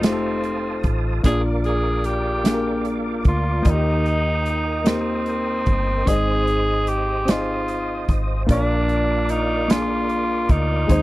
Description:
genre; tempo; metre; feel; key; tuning
slow gospel; 50 BPM (dotted quarters); 6/8; straight; unclear; A4 = 438 Hz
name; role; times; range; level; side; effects
warm concert grand piano; accompaniment; 0.0-11.0 s; Ab2 to Eb5; -24 LUFS; left 1 dB; none
tonewheel organ; sustained chords; 0.0-11.0 s; Bb4 to Eb6; -31 LUFS; right 2 dB; slow rotary speaker, overdrive, chorus vibrato
deep dub fingered electric bass; bass; 0.0-11.0 s; F1 to Eb2; -24 LUFS; equal; none
natural country drum kit; drums; 0.0-11.0 s; hi-hat, kick drum, snare drum; -19 LUFS; equal; none
raspy tenor saxophone; melody; 0.1-11.0 s; C4 to Ab4; -24 LUFS; equal; tape echo
room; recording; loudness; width
little or no reverb; dry, close 1970s-style studio recording; -18 LUFS; side -18 dB against mid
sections
0.0-11.0 A section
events
none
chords
0.0 F7; 1.2 Bb; 3.7 Eb; 6.1 Ab; 8.5 Bb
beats
0.04 | 1.25 2.46 | 3.66 4.87 | 6.08 7.28 | 8.49 9.69 | 10.89

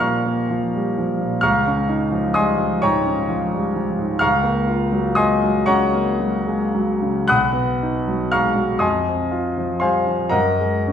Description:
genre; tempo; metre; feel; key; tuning
classical, impressionist solo piano; 36-43 BPM (dotted quarters); 6/8; rubato; unclear; A4 = 443 Hz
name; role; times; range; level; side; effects
clear concert grand piano; solo; 0.0-10.9 s; B1 to F#6; -17 LUFS; equal; none
room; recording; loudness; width
wet recital hall reverb, RT60 1.2 s; recorded in a church or concert hall; -17 LUFS; side -8 dB against mid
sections
0.0-10.9 A section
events
none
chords
0.0 Bbm9/Eb; 1.4 Dbadd9; 4.2 Gbmaj7/Db; 7.3 Bmaj7; 8.8 Fm7; 10.3 Gb69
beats
0.01 | 1.43 2.84 | 4.23 5.67 | 7.29 8.83 | 10.34

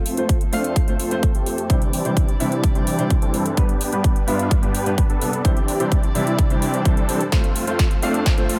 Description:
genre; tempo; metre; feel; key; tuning
EDM, festival progressive house; 128 BPM; 4/4; straight; C major; A4 = 439 Hz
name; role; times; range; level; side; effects
dark chamber string section; sustained chords; 0.0-8.6 s; F2 to D5; -36 LUFS; equal; sidechain pumping, low-pass filter
supersaw chords; riff; 0.0-8.6 s; E3 to C5; -26 LUFS; equal; vintage 12-bit sampler grit, sidechain pumping, low-pass filter, tape echo
big-room dance drum kit; drums; 0.1-8.6 s; hi-hat, snare drum; -31 LUFS; equal; high-pass filter on hats, high-pass filter on snare
dark baby grand piano; accompaniment; 0.2-8.5 s; G2 to F5; -28 LUFS; equal; sidechain pumping, tape echo
electronic kick drum; drums; 0.3-8.4 s; none; -21 LUFS; equal; overdrive
riser; sound effects; 8.5-8.6 s; none; barely audible; none; none
room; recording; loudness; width
light reverb, digital ambience; none; -20 LUFS; mono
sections
0.0-8.6 A section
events
build-up 0.0-8.6; filter sweep on supersaw synth 0.0-8.6; drum fill 7.3-8.6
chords
0.0 F; 1.7 Cadd9; 3.6 G; 5.4 Cadd9; 7.3 F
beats
0.29 0.76 1.23 | 1.70 2.17 2.64 3.10 | 3.57 4.04 4.51 4.98 | 5.45 5.92 6.39 6.86 | 7.32 7.79 8.26

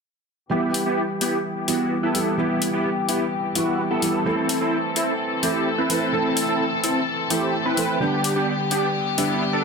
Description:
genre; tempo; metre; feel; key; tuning
EDM, festival progressive house; 128 BPM; 4/4; straight; E minor; A4 = 441 Hz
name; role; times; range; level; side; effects
felt-muted upright piano; accompaniment; 0.5-9.6 s; D3 to A4; -26 LUFS; right 3 dB; ping-pong delay
rich studio string section; sustained chords; 0.5-9.6 s; D3 to A4; -28 LUFS; left 4 dB; low-pass filter
supersaw chords; riff; 0.5-9.6 s; B3 to B4; -23 LUFS; equal; lush chorus, low-pass filter, ping-pong delay
electronic hi-hat; drums; 0.7-9.3 s; none; -26 LUFS; left 3 dB; none
room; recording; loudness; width
moderate digital room reverb, RT60 1.1 s, studio ambience; dense, heavily limited modern master; -20 LUFS; side -5 dB against mid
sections
0.5-9.6 A section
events
filter sweep on string section 0.5-9.6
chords
0.5 Em; 4.3 Am; 8.0 G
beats
| 0.51 0.98 1.45 1.91 | 2.38 2.85 3.32 3.79 | 4.26 4.73 5.20 5.66 | 6.13 6.60 7.07 7.54 | 8.01 8.48 8.95 9.41

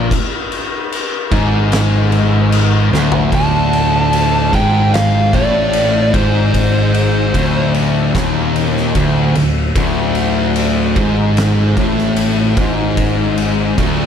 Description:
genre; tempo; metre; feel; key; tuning
stoner and doom metal; 75 BPM; 4/4; straight; unclear; A4 = 439 Hz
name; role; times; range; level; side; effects
distorted electric guitar; riff; 0.0-14.1 s; D2 to Bb2; -20 LUFS; right 1 dB; overdrive
thick fuzz guitar; riff; 0.0-14.1 s; D2 to Bb2; -17 LUFS; left 7 dB; distortion
thick fuzz guitar; riff; 0.0-14.1 s; D2 to Bb2; -20 LUFS; right 7 dB; distortion
picked electric bass; bass; 0.0-14.1 s; D1 to A1; -19 LUFS; equal; overdrive
oversized low-tuned drum kit; drums; 0.1-14.0 s; crash cymbal, kick drum, ride cymbal, snare drum, toms; -19 LUFS; equal; none
fuzz lead guitar; melody; 3.3-7.7 s; C5 to A5; -17 LUFS; right 2 dB; distortion, analog delay
room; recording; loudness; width
small room ambience; none; -12 LUFS; side -8 dB against mid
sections
0.0-3.3 A section; 3.3-14.1 B section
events
drum fill 2.9-3.3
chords
0.0 N.C.; 3.3 D5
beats
| 0.12 0.92 1.72 2.53 | 3.33 4.13 4.94 5.74 | 6.54 7.35 8.15 8.96 | 9.76 10.56 11.37 12.17 | 12.97 13.78

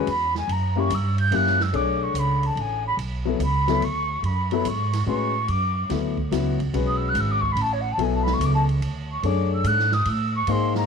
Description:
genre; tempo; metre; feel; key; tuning
modal jazz; 144 BPM; 3/4; swing 67% on 8ths; B dorian; A4 = 441 Hz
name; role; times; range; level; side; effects
warm grand piano; accompaniment; 0.0-10.9 s; F#3 to C#5; -27 LUFS; left 12 dB; none
upright bass; bass; 0.0-10.9 s; G#1 to A2; -24 LUFS; right 2 dB; none
mellow concert flute; melody; 0.1-10.9 s; C#5 to G6; -25 LUFS; equal; none
open jazz drum kit; drums; 0.1-10.8 s; hi-hat, kick drum, ride cymbal, snare drum; -36 LUFS; right 8 dB; none
room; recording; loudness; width
light reverb, small room ambience; 1960s-style stereo with parts hard left and right; -20 LUFS; side -6 dB against mid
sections
0.0-1.7 A section; 1.7-10.9 A section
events
flute solo 0.0-10.9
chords
0.5 F#7b9; 1.7 Bm9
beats
0.07 | 0.48 0.90 1.32 | 1.73 2.15 2.57 | 2.98 3.40 3.82 | 4.23 4.65 5.07 | 5.48 5.90 6.32 | 6.73 7.15 7.57 | 7.98 8.40 8.81 | 9.23 9.65 10.06 | 10.48

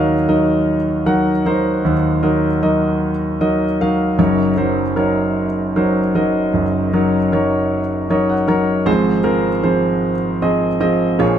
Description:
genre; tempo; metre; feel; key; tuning
folk; 51 BPM (dotted quarters); 6/8; straight; unclear; A4 = 442 Hz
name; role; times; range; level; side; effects
warm concert grand piano; solo; 0.0-11.4 s; Gb1 to Bb5; -14 LUFS; equal; none
room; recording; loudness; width
little or no reverb; close, detailed microphones; -14 LUFS; side -9 dB against mid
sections
0.0-11.4 A section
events
none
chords
0.0 Ebm; 4.2 Gb6; 8.9 Fm/Ab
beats
0.68 | 1.85 3.02 | 4.19 5.36 | 6.54 7.71 | 8.88 10.05 | 11.22

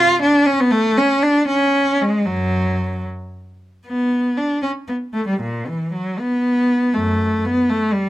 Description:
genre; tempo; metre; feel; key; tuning
classical, baroque-style suite movement for unaccompanied cello; 77 BPM (dotted quarters); 6/8; uneven beats, rubato; F# minor, B minor from 3.9 s; A4 = 440 Hz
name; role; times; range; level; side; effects
rich cello; solo; 0.0-8.1 s; F#2 to E#4; -16 LUFS; equal; none
room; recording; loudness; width
light reverb; close, detailed microphones; -16 LUFS; side -14 dB against mid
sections
0.0-3.9 A section; 3.9-8.1 A section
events
none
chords
none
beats
| 0.71 1.48 | 2.26 3.06 | 3.85 4.62 | 5.41 6.19 | 6.94 7.68

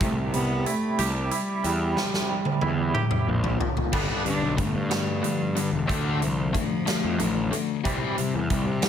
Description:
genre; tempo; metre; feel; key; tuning
quiet-loud alternative rock; 61 BPM (dotted quarters); 6/8; straight; unclear; A4 = 441 Hz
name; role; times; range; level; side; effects
rich cello; melody; 0.0-8.9 s; D3 to D4; -30 LUFS; equal; plate reverb
twangy electric guitar; arpeggios; 0.0-8.9 s; Bb2 to G4; -31 LUFS; right 3 dB; tremolo, plate reverb, tape echo
fuzz picked electric bass; bass; 0.0-8.9 s; E1 to C3; -28 LUFS; equal; overdrive
big rock drum kit; drums; 0.0-8.9 s; crash cymbal, hi-hat, kick drum, snare drum, toms; -28 LUFS; right 1 dB; none
fuzz guitar; riff; 3.9-8.9 s; G2 to D4; -28 LUFS; left 10 dB; distortion
room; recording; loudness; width
light reverb; none; -23 LUFS; side -9 dB against mid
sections
0.0-3.9 A section; 3.9-8.9 B section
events
half time 0.0-3.9; drum fill 2.0-3.9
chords
0.0 C; 3.3 N.C.; 3.9 Gadd9; 5.9 Dm7; 7.9 C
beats
| 0.01 0.99 | 1.97 2.95 | 3.93 4.91 | 5.89 6.87 | 7.85 8.83

